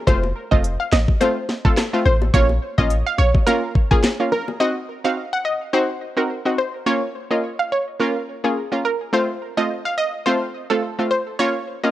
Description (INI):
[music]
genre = dancehall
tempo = 106 BPM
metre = 4/4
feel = swing 56% on 16ths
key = Bb harmonic minor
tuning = A4 = 440 Hz
[part]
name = analog pluck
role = melody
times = 0.1-11.9 s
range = Ab4 to Gb5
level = -22 LUFS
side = equal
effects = chorus, tape echo
[part]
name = analog pluck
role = accompaniment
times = 0.1-11.9 s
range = A3 to Gb4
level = -22 LUFS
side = right 1 dB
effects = chorus
[part]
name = clean 808-style bass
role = bass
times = 0.1-3.3 s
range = F1 to Bb1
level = -19 LUFS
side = equal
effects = none
[part]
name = afro-pop drum kit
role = drums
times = 0.1-4.2 s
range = handclaps, hi-hat, kick drum, rim click, snare drum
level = -18 LUFS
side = equal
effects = overdrive
[part]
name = bongos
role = percussion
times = 0.1-4.6 s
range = none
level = -31 LUFS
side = left 5 dB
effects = none
[sound]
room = digital ambience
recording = worn, warbling old tape, cassette tape, warbly pitch drift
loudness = -18 LUFS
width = side -14 dB against mid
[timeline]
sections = 0.0-4.6 A section; 4.6-11.9 B section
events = none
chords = 0.1 F; 2.3 Bbm; 4.6 Cdim; 6.9 Bbm; 9.1 F; 11.4 Bbm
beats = | 0.08 0.64 1.21 1.77 | 2.34 2.91 3.47 4.04 | 4.60 5.17 5.74 6.30 | 6.87 7.43 8.00 8.57 | 9.13 9.70 10.26 10.83 | 11.40